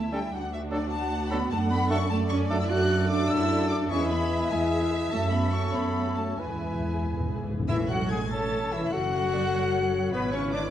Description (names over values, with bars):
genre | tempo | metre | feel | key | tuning
quick classical-period movement for symphony orchestra | 90-102 BPM (dotted quarters) | 6/8 | rubato | A major | A4 = 445 Hz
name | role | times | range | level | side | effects
bright concert flute | second line | 0.0-10.6 s | B4 to F#6 | -36 LUFS | left 1 dB | none
dark studio violin section | second line | 0.0-10.7 s | B4 to A5 | -36 LUFS | left 3 dB | none
rich studio viola section | accompaniment | 0.0-10.7 s | A3 to B4 | -36 LUFS | equal | none
dark chamber cello section | bass | 0.0-10.7 s | B2 to F#4 | -32 LUFS | right 2 dB | none
warm studio double bass section | bass | 0.0-10.7 s | F#1 to F#2 | -30 LUFS | right 3 dB | none
warm studio violin section | melody | 0.1-10.7 s | G5 to A6 | -37 LUFS | left 3 dB | none
mellow clarinet | second line | 0.1-10.7 s | C#4 to F#5 | -37 LUFS | left 1 dB | none
mellow bassoon | accompaniment | 0.1-7.5 s | F#3 to B3 | -37 LUFS | right 2 dB | none
mellow French horn section | sustained chords | 0.1-10.7 s | E3 to A4 | -32 LUFS | left 4 dB | none
warm trumpet | stabs | 0.1-10.6 s | B3 to B4 | -35 LUFS | equal | none
timpani | percussion | 6.4-8.3 s | E2 to A2 | -32 LUFS | left 1 dB | none
room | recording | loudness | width
moderate recital hall reverb, RT60 1.4 s | dark, warm production | -24 LUFS | side -11 dB against mid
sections
0.0-7.7 A section; 7.7-10.7 B section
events
timpani fill 6.4-7.7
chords
0.3 D; 1.5 D/F#; 3.9 E; 5.1 F#m; 6.4 E; 7.7 A; 8.9 F#m; 10.1 E/G#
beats
| 0.33 0.92 | 1.51 2.11 | 2.70 3.30 | 3.90 4.51 | 5.12 5.75 | 6.40 7.05 | 7.69 8.32 | 8.93 9.54 | 10.13